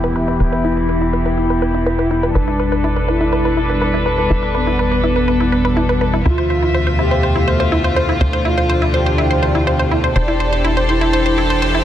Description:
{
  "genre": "techno",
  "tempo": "123 BPM",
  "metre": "4/4",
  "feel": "straight",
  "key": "unclear",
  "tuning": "A4 = 441 Hz",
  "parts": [
    { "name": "expressive portamento lead", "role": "melody", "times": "0.0-11.8 s", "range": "B3 to G4", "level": "-21 LUFS", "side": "left 1 dB", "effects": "ensemble chorus, dub echo" },
    { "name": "dark studio string section", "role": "sustained chords", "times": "0.0-11.8 s", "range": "D3 to E5", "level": "-19 LUFS", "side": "left 1 dB", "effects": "low-pass filter" },
    { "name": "wide unison pluck", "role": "arpeggios", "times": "0.0-11.8 s", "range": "E4 to C5", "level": "-20 LUFS", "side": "equal", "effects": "tape echo" },
    { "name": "tight sequencer bass", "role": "bass", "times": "0.0-11.8 s", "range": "E1 to D2", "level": "-20 LUFS", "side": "equal", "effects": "none" },
    { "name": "analog drone", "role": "drone", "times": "0.0-11.8 s", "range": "E2 to B2", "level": "-23 LUFS", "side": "equal", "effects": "chorus" },
    { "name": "impact and riser", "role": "sound effects", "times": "0.0-0.4, 11.2-11.8 s", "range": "none", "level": "-33 LUFS", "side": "right 1 dB", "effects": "none" }
  ],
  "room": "light reverb",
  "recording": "dense, heavily limited modern master",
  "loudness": "-14 LUFS",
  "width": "side -11 dB against mid",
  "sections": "0.0-11.8 A section",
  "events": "impact 0.0-0.4; filter sweep on synth pluck 0.0-11.8; filter sweep on string section 0.0-11.8",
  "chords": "0.0 Em; 2.4 Gadd9; 6.3 Dm; 10.2 F6",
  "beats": "| 0.40 0.89 1.38 1.86 | 2.35 2.84 3.33 3.82 | 4.30 4.79 5.28 5.77 | 6.26 6.74 7.23 7.72 | 8.21 8.70 9.18 9.67 | 10.16 10.65 11.13 11.62"
}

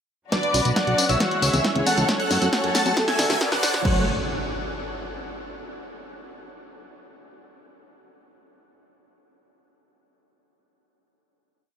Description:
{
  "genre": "uplifting trance",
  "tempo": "136 BPM",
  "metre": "4/4",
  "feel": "straight",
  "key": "F# minor",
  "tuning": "A4 = 440 Hz",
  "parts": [
    { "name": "big supersaw lead", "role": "melody", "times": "0.3-4.0 s", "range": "A4 to A5", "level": "-27 LUFS", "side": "right 1 dB", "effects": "phaser, sidechain pumping, low-pass filter, dub echo" },
    { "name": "dark studio violin section", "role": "second line", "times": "0.3-4.0 s", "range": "A3 to F#5", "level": "-30 LUFS", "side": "left 1 dB", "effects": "tape echo" },
    { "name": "plucky unison lead", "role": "second line", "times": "0.3-4.0 s", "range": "D6 to A6", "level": "-32 LUFS", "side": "equal", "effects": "sidechain pumping, dub echo" },
    { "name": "clear studio string section", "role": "sustained chords", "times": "0.3-4.1 s", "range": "C#3 to A4", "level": "-32 LUFS", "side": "left 2 dB", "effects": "sidechain pumping" },
    { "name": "analog pluck", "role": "arpeggios", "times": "0.3-4.1 s", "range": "E3 to F#4", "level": "-32 LUFS", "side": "right 3 dB", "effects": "chorus, sidechain pumping, dub echo" },
    { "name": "electronic kick drum", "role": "drums", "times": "0.3-3.9 s", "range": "none", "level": "-28 LUFS", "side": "equal", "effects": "high-pass filter on kick, high-pass filter on room" },
    { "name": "punchy analog drum machine", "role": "drums", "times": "0.3-3.9 s", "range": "congas, crash cymbal, hi-hat, snare drum, tambourine", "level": "-26 LUFS", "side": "left 1 dB", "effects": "none" },
    { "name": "riser and impact", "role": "sound effects", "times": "1.6-5.6 s", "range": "none", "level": "-33 LUFS", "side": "right 1 dB", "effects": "none" },
    { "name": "fat analog bass", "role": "bass", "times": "0.5-4.1 s", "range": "B1 to F#2", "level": "-25 LUFS", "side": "equal", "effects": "sidechain pumping" }
  ],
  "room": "moderate huge ambient reverb, RT60 9.0 s",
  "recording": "high-pass filter",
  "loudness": "-19 LUFS",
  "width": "side -8 dB against mid",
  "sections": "0.3-3.9 build; 3.9-5.6 final chord",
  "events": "build-up 0.3-3.9; drum fill 0.3-3.9; filter sweep on supersaw synth 0.3-3.9; filter sweep on synth pluck 0.3-3.9",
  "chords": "0.3 Bmadd9; 1.2 C#m; 2.1 F#m; 3.0 D; 3.9 F#m",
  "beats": "| 0.32 0.76 1.20 1.65 | 2.09 2.53 2.97 3.41 | 3.85 4.29 4.73 5.17"
}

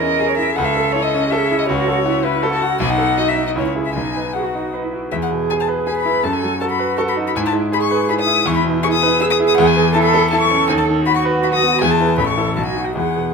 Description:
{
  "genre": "quick classical-period movement for piano trio",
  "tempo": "161 BPM",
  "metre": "3/4",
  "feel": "straight",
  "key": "E major",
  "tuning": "A4 = 443 Hz",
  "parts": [
    { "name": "muted violin", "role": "melody", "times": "0.0-13.3 s", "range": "A4 to E6", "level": "-19 LUFS", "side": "left 8 dB", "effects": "none" },
    { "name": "muted cello", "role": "second line", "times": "0.0-13.3 s", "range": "D#4 to B4", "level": "-20 LUFS", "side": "right 8 dB", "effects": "none" },
    { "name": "bright concert grand piano", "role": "accompaniment", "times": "0.0-13.3 s", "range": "A1 to B4", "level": "-19 LUFS", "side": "left 1 dB", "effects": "none" }
  ],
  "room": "moderate large studio reverb, RT60 1.1 s",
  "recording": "minimal, uncompressed stereo recording",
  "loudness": "-14 LUFS",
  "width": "side -5 dB against mid",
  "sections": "0.0-5.1 A section; 5.1-13.3 B section",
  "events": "none",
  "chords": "0.0 C#m/E; 0.6 A/C#; 1.7 F#m7/C#; 2.8 B7; 3.6 C#m; 3.9 B; 5.1 E; 6.2 B7/F#; 7.4 E/G#; 8.5 E; 9.6 A/E; 10.7 B7/D#; 11.8 E; 12.2 A; 12.6 B",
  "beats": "0.19 | 0.56 0.93 1.30 | 1.67 2.05 2.42 | 2.80 3.18 3.56 | 3.95 4.34 4.73 | 5.12 5.50 5.87 | 6.24 6.61 6.98 | 7.36 7.73 8.10 | 8.47 8.84 9.21 | 9.58 9.94 10.31 | 10.69 11.06 11.43 | 11.81 12.18 12.56 | 12.95"
}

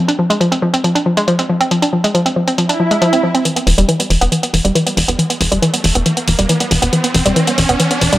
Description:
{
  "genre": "driving peak-time techno",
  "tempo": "138 BPM",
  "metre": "4/4",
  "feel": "straight",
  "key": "E phrygian",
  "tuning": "A4 = 440 Hz",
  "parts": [
    { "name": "woody wave-folded pluck", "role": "riff", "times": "0.0-8.2 s", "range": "E3 to D4", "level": "-14 LUFS", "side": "equal", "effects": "chorus, tape echo" },
    { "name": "electronic hi-hat", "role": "drums", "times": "0.1-8.2 s", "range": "none", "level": "-18 LUFS", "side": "equal", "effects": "low-pass filter on hats, low-pass filter on room" },
    { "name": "swell and riser", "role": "sound effects", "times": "2.7-8.2 s", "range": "none", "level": "-20 LUFS", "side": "right 1 dB", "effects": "none" },
    { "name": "tight sequencer bass", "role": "bass", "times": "3.7-8.2 s", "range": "E1", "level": "-17 LUFS", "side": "equal", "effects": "none" }
  ],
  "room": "light reverb, digital ambience",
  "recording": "dry, gritty hardware recording",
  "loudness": "-12 LUFS",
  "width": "side -15 dB against mid",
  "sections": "0.0-3.5 A section; 3.5-8.2 B section",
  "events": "swell 2.7-3.5; build-up 3.5-8.2; riser 3.5-8.2",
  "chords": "0.0 Fm; 3.5 E5",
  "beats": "0.41 0.84 1.28 | 1.71 2.15 2.58 3.02 | 3.45 3.89 4.32 4.76 | 5.19 5.62 6.06 6.50 | 6.93 7.36 7.80"
}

